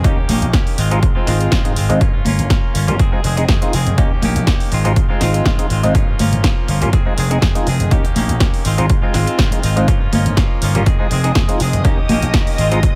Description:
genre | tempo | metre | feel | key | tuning
filtered disco house | 122 BPM | 4/4 | swing 54% on 16ths | unclear | A4 = 440 Hz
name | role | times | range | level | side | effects
mellow clav | accompaniment | 0.0-12.8 s | G3 to Ab4 | -24 LUFS | equal | phaser, sidechain pumping, low-pass filter
direct-recorded clean electric guitar | riff | 0.0-13.0 s | Eb3 to Ab4 | -26 LUFS | equal | sidechain pumping, low-pass filter
vintage slap bass | bass | 0.0-12.9 s | F1 to Ab2 | -20 LUFS | equal | sidechain pumping, low-pass filter
electronic kick drum | drums | 0.0-12.9 s | none | -18 LUFS | equal | none
punchy analog drum machine | drums | 0.0-12.9 s | hi-hat, snare drum | -25 LUFS | equal | sidechain pumping on hats
egg shaker and congas | percussion | 0.1-12.9 s | none | -24 LUFS | equal | sidechain pumping on perc, low-pass filter on perc
string machine, full ensemble | sustained chords | 9.9-13.0 s | Eb5 to Eb6 | -28 LUFS | equal | ensemble chorus, sidechain pumping, low-pass filter
room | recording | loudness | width
little or no reverb | none | -15 LUFS | mono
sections
0.0-13.0 A section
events
none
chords
0.0 Eb7; 0.8 Ab6; 2.0 Gm7b5; 3.0 Fm7; 4.0 Eb7; 4.7 Ab6; 5.9 Gm7b5; 6.9 Fm7; 7.9 Eb7; 8.7 Ab6; 9.9 Gm7b5; 10.9 Fm7; 11.8 Eb7

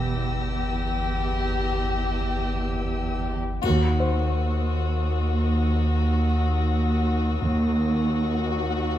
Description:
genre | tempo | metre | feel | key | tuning
cinematic, suspense film score | free time | none | none | unclear | A4 = 436 Hz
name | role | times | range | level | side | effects
rich chamber violin section | melody | 0.0-9.0 s | Gb4 to G4 | -29 LUFS | left 4 dB | none
rich chamber cello section | bass | 0.0-9.0 s | Eb2 to E2 | -26 LUFS | right 1 dB | none
rich studio double bass section | bass | 0.0-8.1 s | E1 to Eb2 | -29 LUFS | right 3 dB | none
punchy sub bass | drone | 0.0-9.0 s | G1 to Eb2 | -26 LUFS | equal | none
felt-muted upright piano | texture | 0.0-9.0 s | C5 | -35 LUFS | left 5 dB | none
rich chamber violin section | texture | 0.0-9.0 s | Eb6 to Bb6 | -38 LUFS | left 5 dB | none
triangle | percussion | 3.6-5.1 s | none | -50 LUFS | equal | none
room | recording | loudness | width
moderate scoring stage reverb, RT60 2.0 s | dark, warm production | -22 LUFS | side -12 dB against mid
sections
0.0-3.6 A section; 3.6-9.0 B section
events
band accent 3.6-4.4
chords
0.0 Em; 3.6 Ebm

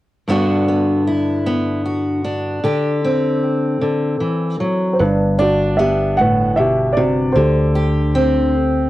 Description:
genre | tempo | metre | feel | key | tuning
folk | 51 BPM (dotted quarters) | 6/8 | straight | G major | A4 = 440 Hz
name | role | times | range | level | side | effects
fingerpicked steel-string acoustic guitar | accompaniment | 0.3-8.9 s | G2 to G4 | -17 LUFS | left 1 dB | cassette tape
dark upright piano | melody | 4.9-8.9 s | D4 to F#5 | -18 LUFS | right 1 dB | cassette tape
fretless electric bass | bass | 5.0-8.9 s | G1 to D2 | -20 LUFS | equal | analog chorus
room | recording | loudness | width
light reverb | home recording on cassette | -15 LUFS | side -16 dB against mid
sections
0.3-5.0 A section; 5.0-8.9 B section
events
none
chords
0.3 Gmaj7; 2.6 D7sus4; 5.0 Gmaj7; 7.4 D7sus4

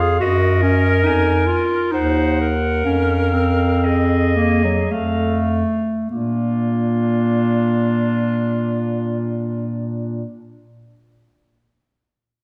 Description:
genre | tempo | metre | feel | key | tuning
classical, lyrical piece for single-reed quartet | 48-73 BPM | 3/4 | rubato | unclear | A4 = 440 Hz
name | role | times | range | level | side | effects
clear clarinet | melody | 0.0-10.3 s | F4 to Ab5 | -28 LUFS | equal | none
warm clarinet | accompaniment | 0.0-10.3 s | Gb3 to Ab4 | -22 LUFS | equal | none
mellow bass clarinet | bass | 0.0-10.3 s | Eb2 to Bb2 | -24 LUFS | equal | none
warm alto saxophone | second line | 0.2-10.3 s | D4 to C5 | -26 LUFS | equal | none
room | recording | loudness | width
wet scoring stage reverb, RT60 1.9 s | none | -18 LUFS | mono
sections
0.0-6.1 A section; 6.1-9.5 B section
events
slowing down 0.0-6.1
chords
0.2 Ebm/Gb; 1.9 Ebm; 2.9 Bb5/F; 4.9 F; 6.1 Bb

